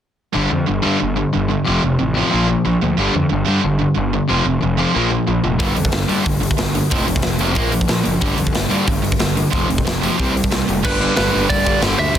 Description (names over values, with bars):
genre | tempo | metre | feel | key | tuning
punk rock | 183 BPM | 4/4 | straight | unclear | A4 = 437 Hz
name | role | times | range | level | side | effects
distorted electric guitar | riff | 0.3-12.2 s | F2 to C4 | -21 LUFS | right 11 dB | overdrive
overdriven semi-hollow guitar | riff | 0.3-12.2 s | F2 to C4 | -20 LUFS | left 6 dB | none
fuzz picked electric bass | bass | 0.4-12.2 s | F1 to G2 | -22 LUFS | equal | overdrive
big rock drum kit | drums | 5.6-12.2 s | crash cymbal, hi-hat, kick drum, snare drum | -20 LUFS | equal | none
thick fuzz guitar | riff | 10.8-12.2 s | G2 to G3 | -26 LUFS | right 2 dB | none
lightly driven lead guitar | melody | 10.9-12.2 s | B4 to E5 | -19 LUFS | right 3 dB | none
room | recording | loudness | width
little or no reverb | dense, heavily limited modern master | -15 LUFS | side -10 dB against mid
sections
0.3-10.8 A section; 10.8-12.2 B section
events
none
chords
0.3 G5; 1.7 F; 2.3 Bb; 3.0 G5; 4.3 F5; 5.0 Bb5; 5.6 G5; 6.9 F5; 7.6 Bb5; 8.2 G5; 9.5 F5; 10.2 C5; 10.8 G